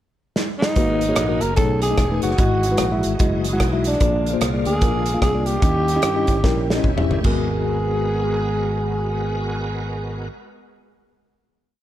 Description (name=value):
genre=uptempo gospel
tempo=148 BPM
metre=4/4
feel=swing 61% on 8ths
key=G# minor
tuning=A4 = 440 Hz
part: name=modern studio drum kit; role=drums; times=0.4-7.4 s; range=hi-hat, kick drum, rim click, snare drum, splash cymbal, toms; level=-22 LUFS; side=equal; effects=none
part: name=growling tenor saxophone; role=melody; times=0.6-10.3 s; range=D4 to A#4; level=-24 LUFS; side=right 1 dB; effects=none
part: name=mellow tine electric piano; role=accompaniment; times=0.8-10.3 s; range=G#1 to F#5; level=-24 LUFS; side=left 2 dB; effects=medium stereo tremolo
part: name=bright tonewheel organ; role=sustained chords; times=0.8-10.3 s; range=D3 to A#4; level=-32 LUFS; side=right 2 dB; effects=slow rotary speaker, chorus vibrato
part: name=dark French horn section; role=sustained chords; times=0.8-10.3 s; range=B2 to A#4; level=-34 LUFS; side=equal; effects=none
part: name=fingered electric bass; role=bass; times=0.8-10.3 s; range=E1 to G2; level=-24 LUFS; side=equal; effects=none
room=light reverb, studio ambience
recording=none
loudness=-18 LUFS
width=side -12 dB against mid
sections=0.0-0.8 pickup bar; 0.8-7.3 breakdown; 7.3-10.5 final chord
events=drum fill 0.4-0.8, 6.4-7.3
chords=0.0 N.C.; 0.8 G#m9; 1.6 B13; 2.4 Emaj9/G#; 4.0 A#7; 5.6 D#7b9; 7.3 G#m9